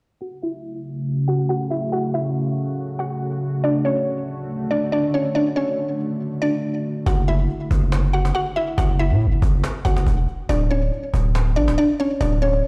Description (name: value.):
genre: hip hop, trap.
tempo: 140 BPM.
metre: 4/4.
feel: half-time.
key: F# minor.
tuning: A4 = 440 Hz.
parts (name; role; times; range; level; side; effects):
mallet-like synth pluck; melody; 0.2-12.7 s; C#4 to F#5; -25 LUFS; equal; chorus, phaser, low-pass filter, digital delay.
deep dark ambient pad; sustained chords; 0.8-7.0 s; C#3 to F#4; -28 LUFS; equal; chorus, built-in reverb, low-pass filter.
distorted 808-style bass; bass; 7.1-12.6 s; D1 to A2; -21 LUFS; equal; distortion.
cajon; drums; 7.1-12.7 s; none; -32 LUFS; equal; none.
room: light reverb, digital ambience.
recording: played on a big sound system in a bare room, stone room reverb.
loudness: -21 LUFS.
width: mono.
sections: 0.2-7.1 A section; 7.1-12.7 B section.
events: filter sweep 0.2-7.1.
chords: 0.2 F#m; 3.6 Dmaj7; 7.1 N.C.; 10.5 Dmaj7(no3).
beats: | 0.21 0.64 1.06 1.49 | 1.92 2.35 2.78 3.21 | 3.64 4.07 4.49 4.92 | 5.35 5.78 6.21 6.64 | 7.07 7.49 7.92 8.35 | 8.78 9.21 9.64 10.06 | 10.49 10.92 11.35 11.78 | 12.21 12.64.